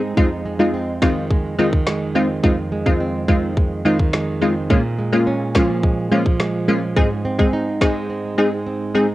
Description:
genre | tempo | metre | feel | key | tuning
dancehall | 106 BPM | 4/4 | straight | F minor | A4 = 438 Hz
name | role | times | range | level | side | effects
flamenco guitar | arpeggios | 0.0-9.1 s | F2 to Eb4 | -22 LUFS | right 2 dB | cassette tape, tape echo
wavetable chord stab | accompaniment | 0.2-9.1 s | Ab3 to Ab4 | -18 LUFS | left 1 dB | cassette tape
island pop drum kit | drums | 0.2-7.9 s | finger snaps, kick drum, snare drum | -18 LUFS | equal | cassette tape
room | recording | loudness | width
little or no reverb | home recording on cassette | -16 LUFS | side -16 dB against mid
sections
0.0-9.1 A section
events
none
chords
0.2 Fm7; 4.7 Bbm7; 7.0 Ab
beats
| 0.17 0.74 1.30 1.87 | 2.44 3.00 3.57 4.13 | 4.70 5.27 5.83 6.40 | 6.97 7.53 8.10 8.66

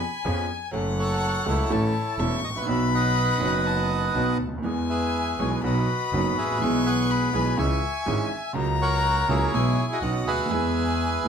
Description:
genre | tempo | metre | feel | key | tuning
tango | 123 BPM | 4/4 | rubato | E major | A4 = 440 Hz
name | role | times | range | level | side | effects
bandoneon | melody | 0.0-11.3 s | E4 to C#6 | -27 LUFS | right 2 dB | plate reverb
warm violin | second line | 0.0-11.3 s | F#5 to C#6 | -30 LUFS | left 7 dB | none
bright grand piano | accompaniment | 0.2-11.3 s | E1 to A4 | -27 LUFS | right 2 dB | none
bright double bass | bass | 0.3-11.2 s | E1 to E#2 | -27 LUFS | equal | none
room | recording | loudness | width
moderate studio ambience, RT60 0.5 s | none | -22 LUFS | side -7 dB against mid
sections
0.0-11.3 A section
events
none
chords
0.0 C#7; 0.7 F#m; 1.7 A; 2.7 B; 4.7 E; 5.6 B; 6.6 E/B; 7.6 C#m; 8.6 F#/C#; 9.5 E/B; 10.0 Badd9; 10.5 E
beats
0.26 | 0.75 1.23 1.72 2.20 | 2.68 3.17 3.66 4.16 | 4.66 5.15 5.65 6.13 | 6.62 7.10 7.58 8.07 | 8.56 9.05 9.54 10.03 | 10.52 11.01

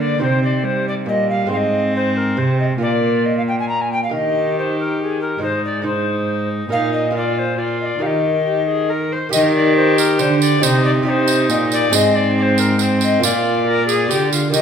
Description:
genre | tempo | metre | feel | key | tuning
classical, renaissance-style consort dance | 138 BPM | 3/4 | straight | Eb major | A4 = 440 Hz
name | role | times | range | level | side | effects
alto recorder | melody | 0.0-14.6 s | Ab4 to Bb5 | -20 LUFS | left 2 dB | none
lute | accompaniment | 0.0-14.6 s | Ab2 to Eb5 | -23 LUFS | right 2 dB | none
warm viola | accompaniment | 0.0-14.6 s | G3 to C5 | -21 LUFS | equal | none
rich cello | bass | 0.0-14.6 s | Ab2 to Eb3 | -21 LUFS | equal | none
tambourine | percussion | 9.3-14.6 s | none | -23 LUFS | right 9 dB | none
room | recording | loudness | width
wet recital hall reverb, RT60 1.4 s | minimal, uncompressed stereo recording | -15 LUFS | side -7 dB against mid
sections
0.0-9.3 A section; 9.3-14.6 A section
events
none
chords
0.2 Cm; 1.5 Ab; 2.8 Bb; 4.1 Eb; 5.4 Ab; 6.7 Bbsus4; 7.1 Bb5; 8.0 Eb; 10.6 Cm; 11.9 Ab; 13.2 Bb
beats
| 0.20 0.64 1.06 | 1.50 1.93 2.37 | 2.80 3.24 3.68 | 4.11 4.55 4.98 | 5.41 5.84 6.28 | 6.71 7.14 7.57 | 8.01 8.45 8.89 | 9.33 9.77 10.20 | 10.63 11.07 11.50 | 11.93 12.37 12.80 | 13.23 13.67 14.11 | 14.54

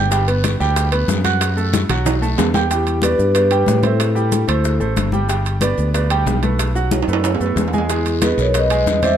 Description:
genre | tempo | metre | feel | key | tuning
latin, salsa | 185 BPM | 4/4 | straight | E minor | A4 = 440 Hz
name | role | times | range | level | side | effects
clear concert grand piano | accompaniment | 0.0-9.2 s | F#3 to G6 | -21 LUFS | right 4 dB | none
fingered electric bass | bass | 0.0-9.2 s | G1 to A2 | -19 LUFS | equal | none
bongos | percussion | 0.1-9.2 s | none | -28 LUFS | left 7 dB | none
congas | percussion | 0.1-9.2 s | none | -24 LUFS | left 4 dB | none
guiro | percussion | 0.1-2.7, 7.9-9.2 s | none | -31 LUFS | left 7 dB | none
maracas | percussion | 0.1-9.2 s | none | -33 LUFS | right 7 dB | none
timbales | percussion | 0.1-9.2 s | none | -25 LUFS | right 8 dB | none
vibraphone with soft mallets | melody | 2.7-4.8, 7.9-9.2 s | E4 to E5 | -19 LUFS | left 1 dB | none
room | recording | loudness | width
light reverb | none | -15 LUFS | side -9 dB against mid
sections
0.0-2.7 A section; 2.7-9.2 B section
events
drum fill 2.1-2.7, 6.9-7.9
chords
0.1 Gmaj7; 1.4 F#madd11; 2.1 B5; 2.7 Em7; 4.0 Am7; 4.6 Dsus2; 5.3 Gadd9; 6.6 B5; 7.9 Emaj7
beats
| 0.12 0.44 0.77 1.09 | 1.41 1.73 2.06 2.38 | 2.70 3.03 3.35 3.67 | 4.00 4.32 4.65 4.97 | 5.30 5.62 5.95 6.27 | 6.59 6.92 7.24 7.57 | 7.89 8.22 8.54 8.87

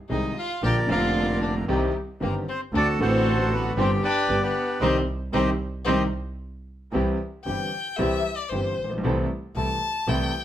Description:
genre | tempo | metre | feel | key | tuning
tango | 114 BPM | 4/4 | rubato | C minor, C major from 6.9 s | A4 = 440 Hz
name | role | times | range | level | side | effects
bandoneon | melody | 0.1-6.0 s | D4 to G5 | -26 LUFS | right 1 dB | none
clear violin | second line | 0.1-10.4 s | Bb3 to A5 | -29 LUFS | left 5 dB | none
clear concert grand piano | accompaniment | 0.1-10.3 s | F1 to A4 | -26 LUFS | equal | none
muted studio string section | stabs | 0.1-10.3 s | G3 to A4 | -33 LUFS | right 2 dB | none
clear double bass | bass | 0.1-10.3 s | F1 to D2 | -28 LUFS | right 1 dB | none
room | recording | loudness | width
light reverb | close, detailed microphones | -22 LUFS | side -11 dB against mid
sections
0.0-6.9 A section; 6.9-10.4 B section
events
band accent 4.8-6.9; violin solo 6.9-10.4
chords
0.0 Ab/C; 0.6 Bb; 1.7 Cm; 2.7 D7; 3.8 Gsus4; 4.3 G; 4.8 Cm; 6.9 C; 9.0 Am/C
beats
0.09 | 0.62 1.15 1.68 2.20 | 2.73 3.25 3.76 4.28 | 4.80 5.33 5.86 6.39 | 6.93 7.46 7.99 8.51 | 9.03 9.55 10.08

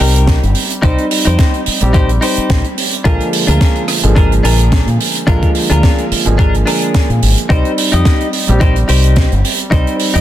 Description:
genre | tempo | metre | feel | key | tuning
nu-disco, nu disco | 108 BPM | 4/4 | swing 54% on 16ths | C minor | A4 = 436 Hz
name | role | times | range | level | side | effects
warm grand piano | accompaniment | 0.0-10.2 s | D3 to Ab4 | -18 LUFS | right 1 dB | dub echo
direct-recorded clean electric guitar | riff | 0.0-10.2 s | D4 to Eb5 | -19 LUFS | left 2 dB | lush chorus, dub echo
fingered electric bass with an envelope filter | bass | 0.0-10.2 s | G1 to Bb2 | -13 LUFS | equal | tube saturation, sidechain pumping
tight funk drum kit | drums | 0.2-10.2 s | hi-hat, rim click, snare drum | -18 LUFS | right 4 dB | none
electronic kick drum | drums | 0.3-9.8 s | none | -12 LUFS | equal | none
room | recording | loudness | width
light reverb, small room ambience | dense, heavily limited modern master | -10 LUFS | side -12 dB against mid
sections
0.0-10.2 A section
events
none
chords
0.0 Cm; 3.1 Bb7; 7.5 Cm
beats
0.28 | 0.83 1.39 1.94 2.50 | 3.06 3.61 4.17 4.72 | 5.28 5.83 6.39 6.94 | 7.50 8.05 8.61 9.17 | 9.72

